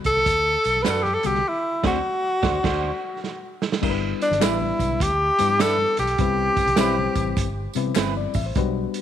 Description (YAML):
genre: uptempo 1960s-style soul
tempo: 101 BPM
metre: 4/4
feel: swing 64% on 8ths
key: G major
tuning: A4 = 444 Hz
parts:
  - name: reed electric piano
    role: accompaniment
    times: 0.0-9.0 s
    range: D3 to E5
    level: -27 LUFS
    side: left 12 dB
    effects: none
  - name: vintage muted fingered electric bass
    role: bass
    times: 0.0-8.8 s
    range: G1 to C3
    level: -28 LUFS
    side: equal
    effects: none
  - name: vintage drum kit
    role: drums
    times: 0.0-9.0 s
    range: crash cymbal, hi-hat, kick drum, snare drum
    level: -26 LUFS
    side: right 4 dB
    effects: none
  - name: warm tenor saxophone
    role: melody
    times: 0.1-7.7 s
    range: D4 to B4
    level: -21 LUFS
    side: equal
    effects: slapback echo
  - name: tambourine and handclaps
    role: percussion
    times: 0.1-9.0 s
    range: none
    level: -36 LUFS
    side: left 2 dB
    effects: none
  - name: congas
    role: percussion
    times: 0.2-8.5 s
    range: none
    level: -38 LUFS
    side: right 8 dB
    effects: none
  - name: electric guitar through a small old amp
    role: stabs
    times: 0.9-8.1 s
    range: C4 to C5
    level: -30 LUFS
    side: right 10 dB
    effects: none
room: light reverb, small room ambience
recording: 1960s-style stereo with parts hard left and right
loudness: -19 LUFS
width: side -10 dB against mid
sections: 0.0-3.8 A section; 3.8-9.0 B section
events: band accent 1.5-3.8; reed electric piano fill 2.6-3.8; drum fill 3.2-3.8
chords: 0.0 Gmaj7; 1.5 D7; 3.8 G6; 6.2 Cmaj7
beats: 0.27 0.86 | 1.45 2.04 2.64 3.23 | 3.82 4.41 5.00 5.59 | 6.19 6.78 7.37 7.96 | 8.56